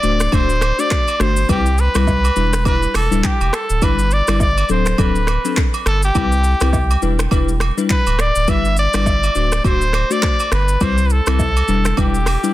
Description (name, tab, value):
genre	afrobeats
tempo	103 BPM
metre	4/4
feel	swing 58% on 16ths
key	unclear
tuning	A4 = 440 Hz
part	clear trumpet	melody	0.0-12.5 s	G4 to E5	-20 LUFS	equal	tape echo
part	glassy digital keys	accompaniment	0.0-12.5 s	F#3 to C5	-21 LUFS	left 5 dB	chorus
part	warm sub bass	bass	0.0-12.4 s	D1 to C2	-18 LUFS	equal	none
part	deep house drum kit	drums	0.0-12.5 s	finger snaps, handclaps, hi-hat, kick drum, rim click, shaker	-20 LUFS	equal	soft clipping on snare
part	agogo bells and woodblock	percussion	0.3-12.4 s	none	-28 LUFS	right 4 dB	none
room	digital ambience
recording	dense, heavily limited modern master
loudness	-14 LUFS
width	side -15 dB against mid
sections	0.0-12.5 A section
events	none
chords	0.0 D7; 1.5 Cmaj7; 2.4 Em7; 3.8 G6; 4.7 D7; 6.2 Cmaj7; 7.0 Em7; 8.5 G6; 9.4 D7; 10.8 Cmaj7; 11.7 Em7